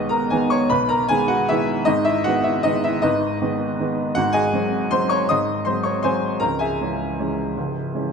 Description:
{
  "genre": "classical, piano waltz",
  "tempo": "157 BPM",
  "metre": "3/4",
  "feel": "uneven beats, rubato",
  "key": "G# minor",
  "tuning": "A4 = 440 Hz",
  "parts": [
    { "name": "clear upright piano", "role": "solo", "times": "0.0-8.1 s", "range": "C#1 to D#6", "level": "-18 LUFS", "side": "equal", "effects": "none" }
  ],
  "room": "wet recital hall reverb, RT60 1.3 s",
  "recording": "none",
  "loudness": "-18 LUFS",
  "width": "side -6 dB against mid",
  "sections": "0.0-8.1 A section",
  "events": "none",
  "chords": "0.0 G#m/B; 1.9 G#m; 4.2 G#7; 6.4 C#m",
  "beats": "0.31 | 0.70 1.09 1.49 | 1.87 2.25 2.65 | 3.04 3.41 3.79 | 4.15 4.53 4.92 | 5.29 5.67 6.04 | 6.41 6.79 7.19 | 7.56 7.94"
}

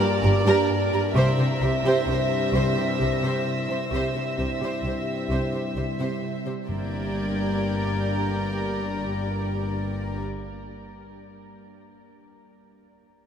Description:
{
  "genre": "cinematic, suspense film score",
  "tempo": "65 BPM",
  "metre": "3/4",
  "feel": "straight",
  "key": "G dorian",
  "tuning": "A4 = 440 Hz",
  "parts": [
    { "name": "warm symphonic violin section", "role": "melody", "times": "0.0-10.2 s", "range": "D5 to E5", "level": "-31 LUFS", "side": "right 1 dB", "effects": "none" },
    { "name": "warm symphonic violin section", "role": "second line", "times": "0.0-10.2 s", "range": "Bb4 to C5", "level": "-32 LUFS", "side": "right 1 dB", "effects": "none" },
    { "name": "dark symphonic viola section", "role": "accompaniment", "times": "0.0-10.2 s", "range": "G4", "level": "-31 LUFS", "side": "right 4 dB", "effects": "none" },
    { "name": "bright trombone section", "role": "sustained chords", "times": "0.0-10.2 s", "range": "G2 to G3", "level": "-33 LUFS", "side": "equal", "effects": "stereo widening" },
    { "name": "mellow French horn section", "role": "sustained chords", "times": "0.0-10.2 s", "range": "Bb3 to E4", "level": "-32 LUFS", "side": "left 2 dB", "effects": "stereo widening" },
    { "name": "folk marimba with hard mallets", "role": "riff", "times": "0.0-6.5 s", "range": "G2 to C4", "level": "-30 LUFS", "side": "left 2 dB", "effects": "none" },
    { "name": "rich symphonic cello section", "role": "bass", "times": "0.0-10.2 s", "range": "G2 to C3", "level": "-29 LUFS", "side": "equal", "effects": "none" },
    { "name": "rich studio violin section", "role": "texture", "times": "0.0-9.0 s", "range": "D6 to Bb6", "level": "-38 LUFS", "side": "equal", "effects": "none" },
    { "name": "warm symphonic double bass section", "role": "bass", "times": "0.2-10.2 s", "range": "G1 to C2", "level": "-30 LUFS", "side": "equal", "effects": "none" },
    { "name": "timpani", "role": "percussion", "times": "6.7-10.9 s", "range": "G2", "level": "-36 LUFS", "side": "left 1 dB", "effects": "none" }
  ],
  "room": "wet huge ambient reverb, RT60 7.5 s",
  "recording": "in a vast, echoing space",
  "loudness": "-22 LUFS",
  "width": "side -8 dB against mid",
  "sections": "0.0-6.7 A section; 6.7-9.5 B section",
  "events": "none",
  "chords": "0.0 Gm; 1.1 C; 6.7 Gm",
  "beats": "0.22 | 1.15 2.07 2.99 | 3.91 4.84 5.76 | 6.68 7.61 8.53"
}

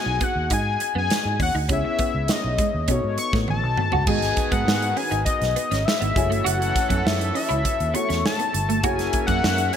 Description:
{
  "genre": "polished 1980s jazz-funk pop",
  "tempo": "101 BPM",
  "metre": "4/4",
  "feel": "straight",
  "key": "unclear",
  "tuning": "A4 = 440 Hz",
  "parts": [
    { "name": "fat analog lead", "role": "melody", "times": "0.0-9.8 s", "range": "C#5 to C#6", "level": "-24 LUFS", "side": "left 4 dB", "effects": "chorus" },
    { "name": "warm grand piano", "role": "accompaniment", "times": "0.0-9.8 s", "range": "G#3 to G#5", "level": "-30 LUFS", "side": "left 4 dB", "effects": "analog chorus" },
    { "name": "vintage muted fingered electric bass", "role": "bass", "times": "0.1-9.7 s", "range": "F#1 to B2", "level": "-26 LUFS", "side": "right 1 dB", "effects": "none" },
    { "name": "clean electric guitar", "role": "riff", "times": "0.2-9.8 s", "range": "G#3 to F#4", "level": "-30 LUFS", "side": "right 4 dB", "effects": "ensemble chorus" },
    { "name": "modern studio drum kit", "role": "drums", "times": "0.2-9.8 s", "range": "crash cymbal, hi-hat, kick drum, snare drum, toms", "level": "-25 LUFS", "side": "right 1 dB", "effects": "gated reverb" },
    { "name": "mellow horn section", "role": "second line", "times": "4.1-9.8 s", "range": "D#3 to E5", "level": "-32 LUFS", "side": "right 5 dB", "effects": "none" }
  ],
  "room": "light reverb",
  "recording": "bright 1980s-style digital production",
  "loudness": "-20 LUFS",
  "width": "side -8 dB against mid",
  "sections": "0.0-4.1 A section; 4.1-9.8 B section",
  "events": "drum fill 3.5-4.1",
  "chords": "0.0 G#m7; 1.7 C#m9; 2.9 B9; 4.1 G#m7; 6.2 F#m9; 8.8 F#9",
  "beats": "0.51 1.10 | 1.70 2.29 2.89 3.48 | 4.08 4.67 5.27 5.87 | 6.46 7.05 7.65 8.24 | 8.84 9.43"
}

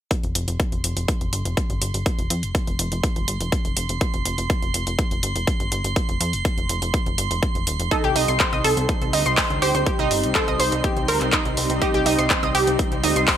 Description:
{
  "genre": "progressive house",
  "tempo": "123 BPM",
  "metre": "4/4",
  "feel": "straight",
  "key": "F mixolydian",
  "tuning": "A4 = 437 Hz",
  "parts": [
    { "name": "big-room dance drum kit", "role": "drums", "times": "0.1-13.4 s", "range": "handclaps, hi-hat", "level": "-25 LUFS", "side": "equal", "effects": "overdrive" },
    { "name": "electronic kick drum", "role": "drums", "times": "0.1-13.4 s", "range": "none", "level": "-23 LUFS", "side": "equal", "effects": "overdrive" },
    { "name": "drifting glass-harmonics texture", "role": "texture", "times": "0.6-13.4 s", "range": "C6", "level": "-32 LUFS", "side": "right 7 dB", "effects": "chorus, built-in reverb, sidechain pumping" },
    { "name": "plucky analog bass", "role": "bass", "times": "0.2-13.3 s", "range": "Eb1 to F2", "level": "-26 LUFS", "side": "equal", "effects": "tube saturation, sidechain pumping" },
    { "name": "wide unison pluck", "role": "melody", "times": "7.9-13.4 s", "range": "G4 to Bb4", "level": "-26 LUFS", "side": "right 1 dB", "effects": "sidechain pumping, dub echo" },
    { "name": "supersaw pad", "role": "sustained chords", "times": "8.3-13.4 s", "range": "G3 to Eb4", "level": "-28 LUFS", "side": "equal", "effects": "sidechain pumping" },
    { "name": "analog pluck", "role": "arpeggios", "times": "7.9-13.3 s", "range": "Eb4 to C6", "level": "-23 LUFS", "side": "right 2 dB", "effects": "chorus, sidechain pumping, dub echo" }
  ],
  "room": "light reverb",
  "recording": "none",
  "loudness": "-19 LUFS",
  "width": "side -10 dB against mid",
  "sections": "0.1-13.4 A section",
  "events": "none",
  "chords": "0.1 Fsus2; 7.9 Cm",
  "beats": "| 0.11 0.60 1.08 1.57 | 2.06 2.55 3.04 3.52 | 4.01 4.50 4.99 5.47 | 5.96 6.45 6.94 7.42 | 7.91 8.40 8.89 9.38 | 9.86 10.35 10.84 11.33 | 11.82 12.30 12.79 13.28"
}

